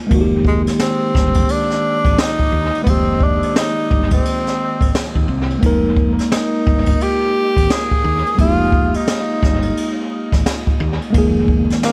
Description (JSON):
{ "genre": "hip hop, jazz-hop", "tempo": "87 BPM", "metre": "4/4", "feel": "swing 62% on 16ths", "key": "F dorian", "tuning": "A4 = 441 Hz", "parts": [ { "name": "tine electric piano", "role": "accompaniment", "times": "0.0-11.9 s", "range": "Eb3 to Bb4", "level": "-22 LUFS", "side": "equal", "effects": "dub echo" }, { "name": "woody fretless electric bass", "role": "bass", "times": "0.1-11.7 s", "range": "F1 to Eb2", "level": "-23 LUFS", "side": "equal", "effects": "lush chorus" }, { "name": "jazz brush drum kit", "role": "drums", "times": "0.1-11.9 s", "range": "hi-hat, kick drum, ride cymbal, snare drum", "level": "-20 LUFS", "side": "equal", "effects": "dub echo" }, { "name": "breathy tenor saxophone", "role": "melody", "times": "0.5-11.9 s", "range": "Ab3 to Ab4", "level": "-22 LUFS", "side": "equal", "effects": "dub echo" } ], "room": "light reverb", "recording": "echo-heavy mix, vinyl crackle", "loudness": "-16 LUFS", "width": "mono", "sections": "0.0-11.9 A section", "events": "none", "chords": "0.0 Fm11", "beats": "| 0.11 0.80 1.49 2.18 | 2.87 3.56 4.25 4.94 | 5.62 6.32 7.00 7.69 | 8.38 9.07 9.76 10.45 | 11.14 11.83" }